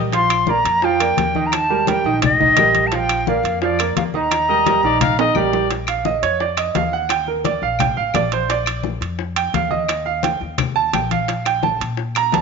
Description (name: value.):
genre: latin, Cuban son and guajira.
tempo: 172 BPM.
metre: 4/4.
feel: straight.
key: Bb major.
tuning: A4 = 440 Hz.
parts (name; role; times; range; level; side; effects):
clear trumpet; second line; 0.0, 4.5-5.7 s; D5 to F5; -22 LUFS; left 14 dB; none.
clear grand piano; arpeggios; 0.0-12.4 s; Eb3 to Bb5; -20 LUFS; right 8 dB; none.
upright bass; bass; 0.0-12.4 s; A1 to Bb2; -27 LUFS; left 2 dB; none.
mellow silver concert flute; melody; 0.1-5.5 s; D5 to C6; -17 LUFS; left 1 dB; none.
bongos; percussion; 0.1-12.4 s; none; -29 LUFS; left 14 dB; none.
congas; percussion; 0.1-12.4 s; none; -25 LUFS; left 12 dB; none.
timbales; percussion; 0.1-12.4 s; none; -26 LUFS; right 10 dB; none.
claves; percussion; 0.3-12.3 s; none; -28 LUFS; left 17 dB; none.
room: moderate echo chamber reverb, RT60 1.4 s, small room ambience.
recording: 1960s-style stereo with parts hard left and right, nothing above 7.5 kHz.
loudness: -16 LUFS.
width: side -5 dB against mid.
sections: 0.0-5.7 A section; 5.7-12.4 B section.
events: drum fill 5.2-5.7; grand piano solo 5.7-12.4.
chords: 0.1 Bb6; 1.5 Eb; 2.9 Bb6; 4.3 Ebmaj7; 5.7 Bb5; 7.1 Eb5; 8.5 Bb; 9.9 Eb5.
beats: | 0.14 0.48 0.83 1.18 | 1.53 1.88 2.22 2.57 | 2.92 3.27 3.62 3.96 | 4.31 4.66 5.01 5.36 | 5.71 6.05 6.40 6.75 | 7.10 7.45 7.80 8.15 | 8.49 8.84 9.19 9.54 | 9.89 10.24 10.59 10.94 | 11.29 11.63 11.98 12.33.